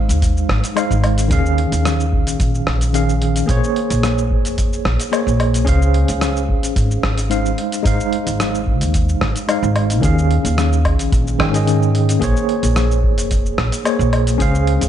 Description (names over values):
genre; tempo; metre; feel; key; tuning
sunset chillout; 110 BPM; 4/4; straight; unclear; A4 = 440 Hz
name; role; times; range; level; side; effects
tine electric piano; accompaniment; 0.0-14.9 s; Eb3 to G5; -19 LUFS; equal; medium stereo tremolo, auto-pan, tape echo
upright bass; bass; 0.0-14.9 s; F1 to Ab2; -17 LUFS; equal; none
dusty soul sampler-style drum kit; drums; 0.1-14.9 s; hi-hat, rim click, shaker, woodblock; -24 LUFS; equal; studio reverb
electronic kick drum; drums; 0.2-14.5 s; none; -20 LUFS; equal; studio reverb
room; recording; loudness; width
light reverb; dark, warm production, nothing above 10.5 kHz; -14 LUFS; side -10 dB against mid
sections
0.0-14.9 A section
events
kick drops out 11.7-12.2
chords
0.0 Ab6; 1.3 Eb9sus4; 3.5 Bbm9; 5.7 Dbmaj7; 7.6 Ab6; 10.0 Eb9sus4; 12.2 Bbm9